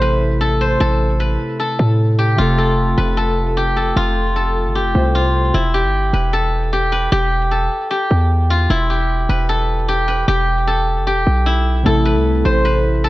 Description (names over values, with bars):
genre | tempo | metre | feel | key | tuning
hip hop, trap | 152 BPM | 4/4 | half-time | E phrygian | A4 = 438 Hz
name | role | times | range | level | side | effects
steel-string zither | melody | 0.0-13.1 s | E4 to C5 | -18 LUFS | left 1 dB | low-pass filter, tape echo
warbly lo-fi synth keys | accompaniment | 0.0-5.6, 11.8-13.1 s | C3 to C5 | -20 LUFS | left 1 dB | chorus, low-pass filter
hard-hitting 808-style bass | bass | 0.0-13.1 s | E1 to A2 | -17 LUFS | equal | none
room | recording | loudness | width
small room reverb | dry, gritty hardware recording | -14 LUFS | side -18 dB against mid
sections
0.0-5.5 A section; 5.5-13.1 B section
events
none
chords
0.0 Am; 2.4 F; 5.5 Em; 11.9 Am